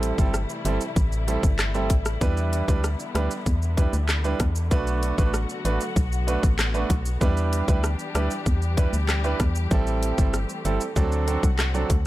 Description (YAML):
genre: dancehall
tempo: 96 BPM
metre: 4/4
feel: straight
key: E minor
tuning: A4 = 440 Hz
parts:
  - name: bright grand piano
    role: accompaniment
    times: 0.0-11.9 s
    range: F#3 to B4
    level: -28 LUFS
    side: right 5 dB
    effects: none
  - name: muted studio string section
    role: sustained chords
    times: 0.0-12.1 s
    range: C3 to G4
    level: -33 LUFS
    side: left 3 dB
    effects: sidechain pumping
  - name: organ-like FM bass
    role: bass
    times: 0.0-12.1 s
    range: G1 to E2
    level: -25 LUFS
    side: equal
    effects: none
  - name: island pop drum kit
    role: drums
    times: 0.0-12.0 s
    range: handclaps, hi-hat, kick drum, rim click, shaker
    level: -24 LUFS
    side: equal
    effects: none
room: little or no reverb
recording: none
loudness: -21 LUFS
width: side -16 dB against mid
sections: 0.0-12.1 A section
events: none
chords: 0.0 Am7; 2.2 Em7; 4.7 Bm7; 7.2 Em7; 9.7 Am7; 11.0 D7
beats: 0.34 0.96 1.59 | 2.21 2.84 3.46 4.09 | 4.71 5.34 5.96 6.59 | 7.21 7.84 8.46 9.09 | 9.71 10.34 10.96 11.59